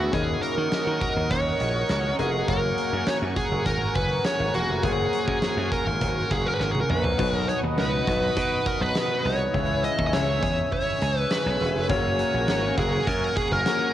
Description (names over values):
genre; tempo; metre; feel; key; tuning
1980s-style pop; 102 BPM; 4/4; straight; B major; A4 = 441 Hz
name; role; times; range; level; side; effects
dark smooth lead guitar; melody; 0.0-13.9 s; F#4 to D#5; -26 LUFS; equal; overdrive, cassette tape
clear baby grand piano; accompaniment; 0.0-13.9 s; B2 to D#5; -32 LUFS; left 8 dB; cassette tape
sweeping resonant pad; sustained chords; 0.0-13.9 s; G#4 to E6; -31 LUFS; right 1 dB; chorus, cassette tape, plate reverb
direct-recorded clean electric guitar; riff; 0.0-13.9 s; E3 to G#4; -34 LUFS; right 9 dB; analog chorus, cassette tape
glassy slap bass; bass; 0.0-13.6 s; E1 to D#3; -28 LUFS; equal; none
huge arena drum kit; drums; 0.1-13.8 s; crash cymbal, hi-hat, kick drum, snare drum, tambourine, toms; -30 LUFS; equal; cassette tape
room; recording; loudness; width
moderate booth ambience, RT60 0.2 s; home recording on cassette; -22 LUFS; side -12 dB against mid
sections
0.0-7.2 A section; 7.2-13.9 B section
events
drum fill 6.6-7.2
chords
0.1 D#m7; 2.5 F#add9; 7.2 B; 9.5 C#m; 11.9 F#add9